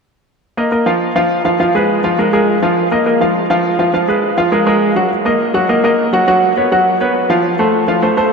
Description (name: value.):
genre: latin.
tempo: 205 BPM.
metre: 4/4.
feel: straight.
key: Eb minor.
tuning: A4 = 439 Hz.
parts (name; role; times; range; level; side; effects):
bright baby grand piano; solo; 0.6-8.3 s; F3 to Gb5; -11 LUFS; equal; none.
room: wet huge ambient reverb, RT60 7.9 s.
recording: in a vast, echoing space.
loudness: -11 LUFS.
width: side -4 dB against mid.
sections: 0.4-5.1 A section; 5.1-8.3 B section.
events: none.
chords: 0.4 Ebsus2; 1.0 N.C.; 1.6 Fdim; 2.2 Bb5; 2.8 Ebsus2; 3.4 N.C.; 3.9 Fdim; 4.5 Gbadd9; 5.1 Ebm; 6.3 Bsus2; 7.4 F.